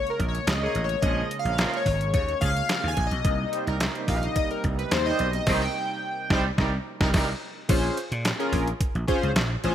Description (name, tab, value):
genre	early-eighties boogie funk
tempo	108 BPM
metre	4/4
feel	straight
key	Bb dorian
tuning	A4 = 440 Hz
part	chorused polysynth	accompaniment	0.0-9.7 s	Db4 to Ab5	-28 LUFS	left 2 dB	none
part	brassy analog pad	sustained chords	0.0-7.7 s	C3 to Eb4	-36 LUFS	right 4 dB	chorus
part	detuned 8-bit digital drum machine	drums	0.1-9.7 s	crash cymbal, handclaps, hi-hat, kick drum, snare drum	-27 LUFS	equal	none
part	vintage slap bass	bass	0.2-9.7 s	Ab1 to Bb2	-27 LUFS	equal	none
part	warm horn section	second line	0.6-7.3 s	Eb3 to Db5	-30 LUFS	right 2 dB	none
room	light reverb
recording	rough home demo mix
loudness	-23 LUFS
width	side -10 dB against mid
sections	0.0-7.7 A section; 7.7-9.7 B section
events	analog polysynth solo 0.0-7.7; band accent 5.5-7.7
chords	0.0 Bbm7; 3.2 Cm7; 7.7 Bbm7